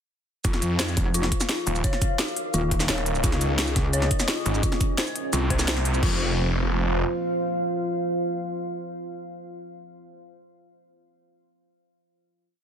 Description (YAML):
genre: dark technical drum and bass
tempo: 172 BPM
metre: 4/4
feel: straight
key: F minor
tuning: A4 = 437 Hz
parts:
  - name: deep dark ambient pad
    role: sustained chords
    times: 1.2-9.6 s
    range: F4 to F5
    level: -29 LUFS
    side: right 1 dB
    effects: chorus, built-in reverb, sidechain pumping
  - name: dark detuned synth bell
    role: arpeggios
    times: 0.4-6.2 s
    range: F4 to Db5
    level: -32 LUFS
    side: left 4 dB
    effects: chorus, sidechain pumping, digital delay
  - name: snarling distorted saw bass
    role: bass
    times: 0.4-7.0 s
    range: Eb1 to F2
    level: -24 LUFS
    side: equal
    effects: overdrive
  - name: drum and bass drum kit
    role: drums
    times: 0.4-6.1 s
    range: crash cymbal, hi-hat, shaker, snare drum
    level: -27 LUFS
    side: equal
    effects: none
  - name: electronic kick drum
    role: drums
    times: 0.4-6.1 s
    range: none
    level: -25 LUFS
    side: equal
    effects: overdrive
  - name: metallic wobble bass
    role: bass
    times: 1.0-4.1 s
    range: Eb1 to Db2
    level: -25 LUFS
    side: equal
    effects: distortion, chorus
room: light reverb, digital ambience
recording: dense, heavily limited modern master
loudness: -22 LUFS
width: side -8 dB against mid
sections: 0.4-6.0 drop; 6.0-8.8 final chord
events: drop 0.4-6.0; band accent 5.7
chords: 0.4 F5; 1.8 Eb5; 3.2 Db; 4.6 Bb5; 6.0 F5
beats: | 0.45 0.80 1.14 1.49 | 1.84 2.19 2.54 2.89 | 3.24 3.58 3.93 4.28 | 4.63 4.98 5.33 5.68 | 6.03 6.38 6.72 7.07 | 7.42 7.77 8.12 8.47